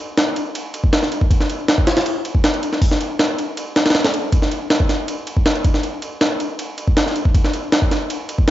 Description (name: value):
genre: drum and bass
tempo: 159 BPM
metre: 4/4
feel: straight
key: none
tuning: none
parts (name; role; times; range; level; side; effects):
- jungle sampler-style drum kit; drums; 0.2-8.5 s; hi-hat, kick drum, ride cymbal, snare drum; -16 LUFS; equal; overdrive
room: light reverb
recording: dry, gritty hardware recording, nothing above 7.6 kHz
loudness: -16 LUFS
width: side -13 dB against mid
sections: 0.0-8.5 A section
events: none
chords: none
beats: 0.18 0.55 0.93 | 1.31 1.69 2.06 2.44 | 2.82 3.19 3.57 3.95 | 4.33 4.70 5.08 5.46 | 5.84 6.21 6.59 6.97 | 7.35 7.72 8.10 8.48